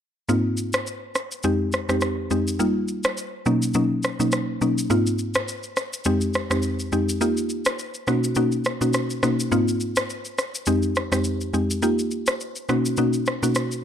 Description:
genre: afrobeats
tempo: 104 BPM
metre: 4/4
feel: swing 55% on 16ths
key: Ab major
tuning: A4 = 440 Hz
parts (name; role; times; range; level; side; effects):
- mallet-like synth pluck; accompaniment; 0.3-13.8 s; F2 to G4; -22 LUFS; equal; chorus
- electronic shaker and rim click; drums; 0.3-13.8 s; none; -26 LUFS; equal; vintage 12-bit sampler grit
room: light reverb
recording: none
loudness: -21 LUFS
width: side -9 dB against mid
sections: 0.3-4.9 A section; 4.9-13.8 B section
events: kick muted 4.9-13.8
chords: 0.3 Ab6; 1.4 Fm7; 2.6 Ebadd9; 3.5 Bmaj7; 4.9 Ab6; 6.1 Fm7; 7.2 Ebadd9; 8.1 Bmaj7; 9.5 Ab6; 10.7 Fm7; 11.8 Ebadd9; 12.7 Bmaj7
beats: | 0.29 0.87 1.44 2.02 | 2.60 3.17 3.75 4.33 | 4.90 5.48 6.06 6.63 | 7.21 7.79 8.37 8.94 | 9.52 10.10 10.67 11.25 | 11.83 12.40 12.98 13.56

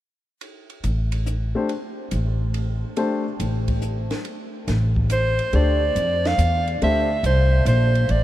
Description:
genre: modal jazz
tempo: 140 BPM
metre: 3/4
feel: swing 67% on 8ths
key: D minor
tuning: A4 = 440 Hz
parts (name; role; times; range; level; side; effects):
- compact cocktail drum kit; drums; 0.4-8.2 s; hi-hat, kick drum, ride cymbal, snare drum; -32 LUFS; equal; none
- upright bass; bass; 0.8-8.2 s; A1 to F2; -20 LUFS; equal; none
- warm grand piano; accompaniment; 1.6-3.2, 5.5-7.1 s; A3 to C5; -28 LUFS; left 3 dB; none
- warm soprano saxophone; melody; 5.1-8.2 s; C5 to F5; -21 LUFS; right 1 dB; none
room: moderate huge ambient reverb, RT60 8.3 s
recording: in a vast, echoing space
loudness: -19 LUFS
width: side -14 dB against mid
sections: 0.4-5.5 A section; 5.5-8.2 B section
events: none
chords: 0.4 N.C.; 5.5 Dm11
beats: | 0.41 0.84 1.27 | 1.70 2.12 2.55 | 2.98 3.40 3.83 | 4.26 4.68 5.11 | 5.54 5.96 6.39 | 6.82 7.25 7.67 | 8.10

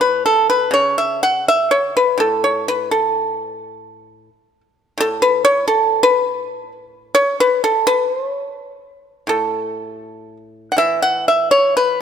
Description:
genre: chinese traditional, Chinese solo plucked strings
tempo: 84 BPM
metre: 4/4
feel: uneven beats, rubato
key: A gong mode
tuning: A4 = 442 Hz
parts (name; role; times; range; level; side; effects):
- pipa; solo; 0.0-12.0 s; A2 to F#5; -14 LUFS; equal; none
room: light reverb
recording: close, detailed microphones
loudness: -14 LUFS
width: side -8 dB against mid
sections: 0.0-12.0 A section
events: none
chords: none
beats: 0.72 1.45 | 2.19 2.90 3.60 4.29 | 4.99 5.68 6.40 7.12 | 7.84 8.55 9.28 10.03 | 10.78 11.53

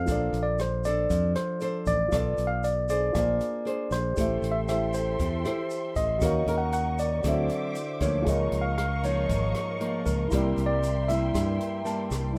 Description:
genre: bossa nova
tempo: 117 BPM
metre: 4/4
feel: straight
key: unclear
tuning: A4 = 443 Hz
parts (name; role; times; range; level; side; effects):
- tine electric piano; melody; 0.0-12.1 s; Bb4 to Gb5; -32 LUFS; equal; none
- dark grand piano; accompaniment; 0.0-12.4 s; E4 to A5; -37 LUFS; equal; none
- nylon-string guitar; accompaniment; 0.0-12.3 s; G2 to D5; -34 LUFS; equal; none
- fingered electric bass; bass; 0.0-12.3 s; Ab1 to G2; -31 LUFS; equal; none
- open jazz drum kit; drums; 0.1-12.2 s; hi-hat, kick drum, rim click; -36 LUFS; equal; none
- tube shaker; percussion; 0.1-12.4 s; none; -50 LUFS; equal; none
- warm symphonic string section; sustained chords; 4.2-12.4 s; A4 to D6; -39 LUFS; equal; none
room: moderate small room reverb, RT60 0.6 s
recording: rough home demo mix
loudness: -27 LUFS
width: mono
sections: 0.0-12.4 A section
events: grand piano fill 11.6-12.4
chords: 0.1 Bbmaj9; 2.1 Bm7b5; 3.2 Bb9; 4.2 Am7; 6.2 Ebm7; 7.2 D9; 8.3 Db69; 10.3 C7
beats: | 0.08 0.59 1.10 1.61 | 2.13 2.64 3.15 3.66 | 4.18 4.69 5.20 5.71 | 6.22 6.74 7.25 7.76 | 8.27 8.78 9.29 9.80 | 10.32 10.83 11.34 11.85 | 12.36

